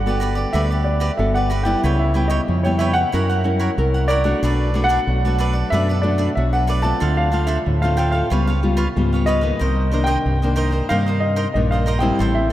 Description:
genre	samba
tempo	93 BPM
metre	4/4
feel	straight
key	unclear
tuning	A4 = 441 Hz
part	warm baby grand piano	melody	0.0-12.5 s	C#5 to A5	-23 LUFS	equal	none
part	nylon-string guitar	accompaniment	0.0-12.5 s	G2 to A#4	-23 LUFS	left 2 dB	none
part	deep dub fingered electric bass	bass	0.0-12.5 s	G1 to G2	-20 LUFS	equal	none
part	cavaquinho	accompaniment	0.1-12.5 s	D4 to G5	-26 LUFS	right 3 dB	none
room	wet cathedral reverb, RT60 4.6 s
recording	in a vast, echoing space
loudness	-16 LUFS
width	side -13 dB against mid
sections	0.0-12.5 A section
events	none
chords	0.0 Gmaj9; 1.8 C#m7b5; 3.1 F#7; 4.4 Bm7; 7.0 Dm7; 8.3 C#7#11; 9.6 Cm9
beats	0.54 1.19 | 1.83 2.48 3.13 3.78 | 4.42 5.07 5.72 6.37 | 7.02 7.67 8.31 8.96 | 9.61 10.26 10.90 11.55 | 12.20

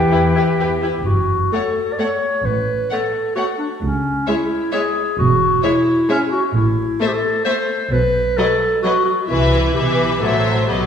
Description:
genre	cinematic, playful, whimsical film cue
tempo	131 BPM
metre	3/4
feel	straight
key	F# minor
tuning	A4 = 442 Hz
part	mellow clarinet	second line	0.0-10.9 s	C#4 to D5	-18 LUFS	left 1 dB	none
part	silver concert flute	second line	0.0-0.8 s	G5	-23 LUFS	equal	none
part	warm oboe	second line	0.0-0.8 s	B4	-30 LUFS	equal	none
part	mellow bassoon	accompaniment	0.0-0.8 s	E3	-25 LUFS	right 4 dB	none
part	warm French horn section	sustained chords	0.0-0.8 s	E4 to G4	-23 LUFS	left 1 dB	none
part	rich studio cello section	bass	0.0-10.9 s	C#2 to E3	-23 LUFS	left 1 dB	none
part	warm studio double bass section	bass	0.0-10.9 s	E1 to E2	-22 LUFS	right 1 dB	none
part	warm studio violin section	melody	0.1-10.9 s	B4 to F#5	-27 LUFS	left 4 dB	none
part	rich studio violin section	second line	0.1-10.9 s	G4 to C#5	-27 LUFS	left 3 dB	none
part	rich studio viola section	accompaniment	0.1-10.9 s	E3 to E4	-24 LUFS	equal	none
room	wet scoring stage reverb, RT60 1.8 s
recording	heard from further back in the room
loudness	-15 LUFS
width	side -8 dB against mid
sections	0.0-1.1 A section; 1.1-10.9 B section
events	none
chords	0.0 Em; 1.1 F#m; 2.4 N.C.; 3.8 C#m; 5.2 N.C.; 6.5 Am; 7.9 B5; 9.3 Cmaj7; 10.2 F#m7b5/A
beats	0.12 0.59 | 1.06 1.52 1.99 | 2.44 2.90 3.36 | 3.81 4.26 4.72 | 5.18 5.64 6.09 | 6.55 7.00 7.46 | 7.92 8.38 8.84 | 9.30 9.76 10.23 | 10.70

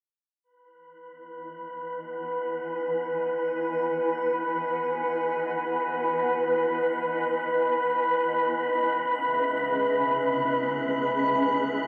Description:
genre	ambient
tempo	free time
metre	none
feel	none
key	E major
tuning	A4 = 439 Hz
part	wind-like tuned noise texture	texture	1.3-11.9 s	B4 to B5	-28 LUFS	equal	built-in reverb
part	granular cloud pad	sustained chords	1.5-11.9 s	C#4 to G#5	-34 LUFS	equal	built-in reverb
room	wet concert hall reverb, RT60 2.2 s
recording	dark, warm production, nothing above 10.4 kHz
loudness	-26 LUFS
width	mono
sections	0.5-11.9 A section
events	fade-in on ambient pad 0.5-11.9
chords	0.5 Emaj9; 8.1 C#m7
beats	free time

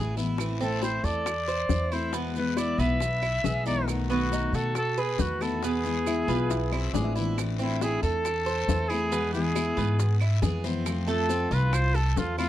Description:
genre	latin, Cuban son and guajira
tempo	138 BPM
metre	4/4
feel	straight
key	A harmonic minor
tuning	A4 = 440 Hz
part	picked steel-string acoustic guitar	accompaniment	0.0-12.5 s	B2 to F#4	-32 LUFS	left 4 dB	none
part	Cuban tres	arpeggios	0.0-12.5 s	A3 to C5	-33 LUFS	right 5 dB	none
part	upright bass	bass	0.0-12.5 s	A1 to B2	-28 LUFS	equal	none
part	bongos	percussion	0.2-12.5 s	none	-34 LUFS	left 10 dB	none
part	guiro	percussion	0.2-12.5 s	none	-43 LUFS	left 14 dB	none
part	maracas	percussion	0.2-12.5 s	none	-42 LUFS	right 19 dB	none
part	claves	percussion	0.4-12.5 s	none	-40 LUFS	right 8 dB	none
part	breathy trumpet	melody	0.6-12.5 s	E4 to E5	-30 LUFS	equal	none
part	concert harp	second line	6.1-9.7 s	C4 to F4	-34 LUFS	left 3 dB	none
room	small room ambience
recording	dry, close 1970s-style studio recording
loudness	-24 LUFS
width	side -13 dB against mid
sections	0.0-7.4 A section; 7.4-12.5 A section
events	none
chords	0.4 Am; 2.1 E; 3.9 B7; 5.6 E; 7.4 Am; 9.1 E; 10.9 F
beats	| 0.40 0.83 1.27 1.71 | 2.14 2.58 3.02 3.45 | 3.89 4.32 4.76 5.20 | 5.63 6.07 6.50 6.94 | 7.38 7.81 8.25 8.68 | 9.12 9.55 9.99 10.43 | 10.86 11.30 11.73 12.17

